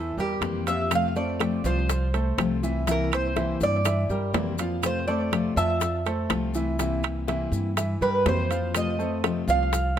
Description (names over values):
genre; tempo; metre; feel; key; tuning
latin, Cuban son and guajira; 123 BPM; 4/4; straight; F major; A4 = 440 Hz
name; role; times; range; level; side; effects
Cuban tres; melody; 0.0-10.0 s; G4 to F5; -27 LUFS; right 2 dB; slapback echo
bright grand piano; arpeggios; 0.0-10.0 s; E3 to A5; -30 LUFS; right 2 dB; none
upright bass; bass; 0.0-10.0 s; C2 to G2; -28 LUFS; equal; none
maracas; percussion; 0.2-10.0 s; none; -39 LUFS; left 6 dB; none
fingerpicked steel-string acoustic guitar; accompaniment; 0.4-9.8 s; C3 to F4; -30 LUFS; left 7 dB; none
bongos; percussion; 0.4-10.0 s; none; -31 LUFS; left 9 dB; none
timbales; percussion; 0.4-10.0 s; none; -30 LUFS; right 11 dB; none
claves; percussion; 0.9-9.5 s; none; -36 LUFS; right 9 dB; none
room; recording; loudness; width
little or no reverb; close, detailed microphones; -23 LUFS; side -10 dB against mid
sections
0.0-10.0 A section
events
Cuban tres solo 0.0-10.0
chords
0.0 C7; 0.9 F; 2.9 C7; 4.8 F; 6.8 C7; 8.7 F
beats
0.43 | 0.92 1.41 1.90 2.39 | 2.88 3.37 3.86 4.35 | 4.83 5.32 5.81 6.30 | 6.79 7.28 7.77 8.26 | 8.75 9.24 9.73